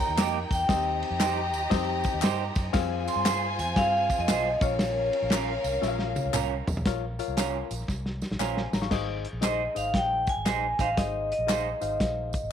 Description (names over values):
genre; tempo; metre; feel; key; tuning
uptempo 1960s-style soul; 117 BPM; 4/4; swing 65% on 8ths; Ab major; A4 = 439 Hz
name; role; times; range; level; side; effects
vibraphone with medium hard mallets; melody; 0.0-6.3, 9.4-12.5 s; Db5 to C6; -28 LUFS; equal; none
warm symphonic violin section; second line; 0.0-6.8 s; Db4 to Bb5; -35 LUFS; left 1 dB; none
barky reed electric piano; accompaniment; 0.0-12.4 s; Bb3 to Db6; -34 LUFS; left 13 dB; overdrive, tube saturation
warm soul drum kit; drums; 0.0-12.4 s; crash cymbal, hi-hat, kick drum, ride cymbal, snare drum, toms; -30 LUFS; equal; none
vintage muted fingered electric bass; bass; 0.1-12.5 s; Ab1 to G2; -34 LUFS; equal; none
electric guitar through a small old amp; stabs; 0.2-11.7 s; Bb3 to C5; -33 LUFS; right 13 dB; none
handclaps and tambourine; percussion; 0.2-12.4 s; none; -37 LUFS; left 3 dB; none
room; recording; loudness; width
moderate spring reverb, RT60 2.1 s; 1960s-style stereo with parts hard left and right; -24 LUFS; side -9 dB against mid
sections
0.0-6.9 A section; 6.9-8.9 B section; 8.9-12.5 C section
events
drum fill 5.8-6.9, 7.9-8.9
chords
0.0 Eb; 0.7 Cm/Eb; 2.7 Fm; 4.5 Bbm; 8.9 Ab